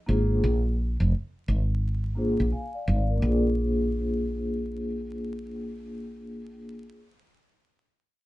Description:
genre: hip hop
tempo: 86 BPM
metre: 4/4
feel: swing 62% on 16ths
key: unclear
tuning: A4 = 440 Hz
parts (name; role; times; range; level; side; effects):
- vibraphone with soft mallets; accompaniment; 0.1-7.0 s; Bb3 to Ab5; -28 LUFS; left 1 dB; low-pass filter
- woody fretless electric bass; bass; 0.1-6.9 s; F1 to Bb1; -26 LUFS; equal; none
room: moderate studio ambience, RT60 0.5 s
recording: band playing live in one room, vinyl crackle, nothing above 10.9 kHz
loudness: -24 LUFS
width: side -17 dB against mid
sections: 0.0-3.2 A section; 3.2-6.0 B section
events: filter sweep on vibraphone 0.0-3.2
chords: 0.4 Bb7

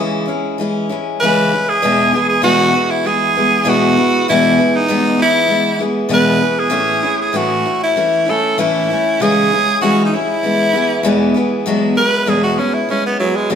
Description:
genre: rock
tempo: 98 BPM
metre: 4/4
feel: straight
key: E major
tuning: A4 = 439 Hz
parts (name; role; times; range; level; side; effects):
- picked steel-string acoustic guitar; accompaniment; 0.0-13.6 s; E2 to E4; -16 LUFS; left 1 dB; none
- raspy tenor saxophone; melody; 1.2-13.6 s; F#3 to B4; -15 LUFS; right 1 dB; none
room: wet stone room reverb, RT60 1.3 s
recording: band playing live in one room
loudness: -12 LUFS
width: side -8 dB against mid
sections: 0.0-11.6 A section; 11.6-13.6 B section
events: tenor saxophone solo 11.6-13.6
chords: 0.0 C#m; 1.8 E; 6.7 A; 9.2 C#m; 10.4 E; 11.6 Eadd9

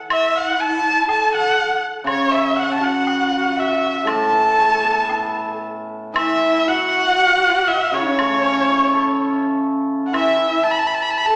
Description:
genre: chinese traditional, Chinese chamber ensemble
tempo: 60 BPM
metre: 2/4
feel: rubato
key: A gong mode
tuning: A4 = 436 Hz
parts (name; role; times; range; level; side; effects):
- hammered dulcimer; accompaniment; 0.0-11.4 s; A2 to A4; -25 LUFS; equal; none
- warm erhu; melody; 0.1-11.4 s; C#5 to B5; -21 LUFS; equal; none
- rich erhu; second line; 0.1-11.4 s; C#5 to A5; -25 LUFS; equal; none
- warm horsehead fiddle; second line; 0.1-11.4 s; C#4 to A4; -28 LUFS; equal; none
- woodblock; percussion; 0.1-10.4 s; none; -29 LUFS; equal; none
room: wet recital hall reverb, RT60 1.4 s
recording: none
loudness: -18 LUFS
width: mono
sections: 0.0-6.2 A section; 6.2-11.4 B section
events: none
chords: none

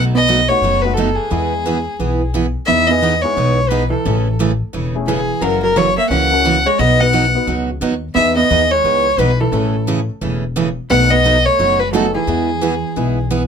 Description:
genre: country, western swing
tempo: 175 BPM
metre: 4/4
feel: swing 62% on 8ths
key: E major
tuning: A4 = 440 Hz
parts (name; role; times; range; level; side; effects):
- dark fiddle; melody; 0.0-13.3 s; G#4 to F#5; -16 LUFS; left 1 dB; none
- picked steel-string acoustic guitar; accompaniment; 0.0-13.4 s; B2 to G#4; -20 LUFS; right 5 dB; none
- upright bass; bass; 0.0-13.5 s; E1 to E2; -20 LUFS; left 2 dB; none
- hollow-body jazz guitar; second line; 0.1-13.3 s; E3 to C#4; -21 LUFS; right 5 dB; none
- warm upright piano; accompaniment; 0.5-13.2 s; G#3 to B4; -24 LUFS; left 6 dB; none
room: light reverb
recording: none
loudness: -13 LUFS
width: side -7 dB against mid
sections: 0.0-2.7 A section; 2.7-13.5 A section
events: none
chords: 0.0 B7; 1.3 E; 2.7 Emaj7; 4.0 Amaj7; 5.4 F#7; 6.8 B; 8.2 Emaj7; 9.5 Amaj7; 10.9 B7; 12.3 E

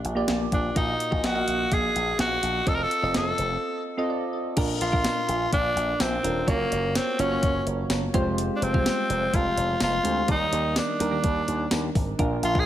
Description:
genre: 1980s-style pop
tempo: 126 BPM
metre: 4/4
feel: straight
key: unclear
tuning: A4 = 441 Hz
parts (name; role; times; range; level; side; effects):
- soft electric-piano-like synth keys; accompaniment; 0.0-12.7 s; Bb2 to F5; -29 LUFS; right 1 dB; chorus
- slap bass with an envelope filter; bass; 0.0-12.7 s; Eb1 to Eb2; -30 LUFS; equal; tube saturation
- clean 12-bit digital drum machine; drums; 0.0-12.7 s; crash cymbal, hi-hat, kick drum, snare drum, tambourine; -27 LUFS; equal; overdrive
- raspy tenor saxophone; melody; 0.5-12.7 s; Bb3 to Bb4; -26 LUFS; equal; none
room: light reverb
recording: none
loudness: -22 LUFS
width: side -12 dB against mid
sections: 0.0-4.6 A section; 4.6-12.7 B section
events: break 3.6-4.6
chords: 0.0 Gm7/Bb; 0.8 Ebmadd9/Bb; 2.7 F7; 4.6 Bb; 6.5 Gbmaj7; 8.1 Fmadd9; 10.3 Ebmaj7

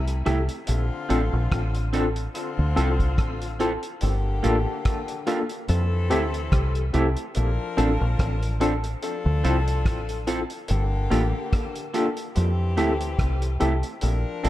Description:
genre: lovers rock reggae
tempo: 72 BPM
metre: 4/4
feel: swing 55% on 16ths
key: F major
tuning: A4 = 440 Hz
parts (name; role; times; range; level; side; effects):
- edgy saxophone section; second line; 0.0-14.5 s; C3 to Bb4; -33 LUFS; left 4 dB; dub echo
- deep dub fingered electric bass; bass; 0.0-14.5 s; G1 to F2; -23 LUFS; equal; none
- tine electric piano; accompaniment; 0.1-14.5 s; Bb3 to A4; -29 LUFS; left 2 dB; medium tremolo, dub echo
- cloth-damped thuddy drum kit; drums; 0.1-14.5 s; hi-hat, kick drum, rim click; -28 LUFS; equal; none
- electric guitar through a small old amp; stabs; 0.3-14.5 s; A3 to A4; -31 LUFS; right 5 dB; dub echo
room: light reverb, studio reverb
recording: dark, warm production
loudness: -22 LUFS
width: side -14 dB against mid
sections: 0.0-14.5 A section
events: none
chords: 0.0 Fmaj9 (rootless); 0.7 Bbmaj9; 2.4 Dm7; 4.0 Gm7; 5.7 Fmaj9; 7.4 Bbmaj9; 9.0 Dm7; 10.7 Gm7; 12.4 Fmaj9

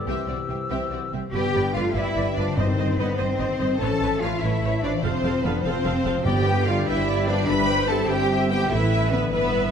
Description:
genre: cinematic, heroic adventure film score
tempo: 97 BPM (dotted quarters)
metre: 6/8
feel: straight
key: G mixolydian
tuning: A4 = 439 Hz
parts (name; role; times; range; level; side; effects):
- bright clarinet; second line; 0.0-1.1 s; G4; -36 LUFS; left 5 dB; none
- silver concert flute; second line; 0.0-1.1 s; E6; -33 LUFS; left 4 dB; none
- dark French horn section; sustained chords; 0.0-9.7 s; D3 to C5; -29 LUFS; left 3 dB; none
- concert harp; arpeggios; 0.0-9.7 s; F2 to B5; -30 LUFS; left 7 dB; none
- warm symphonic violin section; melody; 0.1-9.7 s; B4 to B5; -33 LUFS; left 3 dB; none
- rich symphonic violin section; second line; 0.1-9.7 s; F#4 to B5; -31 LUFS; left 4 dB; none
- rich symphonic viola section; accompaniment; 0.1-9.7 s; C4 to G5; -31 LUFS; right 2 dB; none
- rich symphonic cello section; bass; 0.1-9.7 s; C3 to B4; -27 LUFS; right 2 dB; none
- rich symphonic double bass section; bass; 0.1-9.7 s; F1 to C2; -27 LUFS; right 3 dB; none
- timpani; percussion; 2.6-3.2, 6.3-6.8 s; G2; -28 LUFS; equal; none
room: wet concert hall reverb, RT60 1.7 s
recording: none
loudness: -20 LUFS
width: side -7 dB against mid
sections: 0.0-1.3 A section; 1.3-9.7 B section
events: none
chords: 0.1 C; 1.3 G; 2.6 Cm/G; 3.8 Aadd9; 5.0 F; 6.3 G; 7.5 C/G

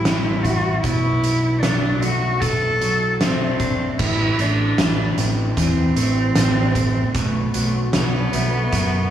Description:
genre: post-rock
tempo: 76 BPM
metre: 4/4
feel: straight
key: A dorian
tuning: A4 = 437 Hz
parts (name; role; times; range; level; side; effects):
- rich cello; melody; 0.0-9.1 s; A3 to A4; -22 LUFS; right 1 dB; slapback echo
- electric guitar at the edge of break-up; arpeggios; 0.0-9.1 s; A2 to E4; -25 LUFS; left 2 dB; phaser, slapback echo
- growling fingered electric bass; bass; 0.0-9.1 s; A1 to F#2; -22 LUFS; equal; overdrive
- oversized low-tuned drum kit; drums; 0.1-8.9 s; crash cymbal, hi-hat, kick drum, snare drum; -23 LUFS; right 1 dB; none
room: light reverb, studio reverb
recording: none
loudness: -17 LUFS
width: side -10 dB against mid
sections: 0.0-4.0 A section; 4.0-9.1 B section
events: none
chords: 0.0 Am7; 0.8 Bm7; 4.0 Am; 7.2 B5

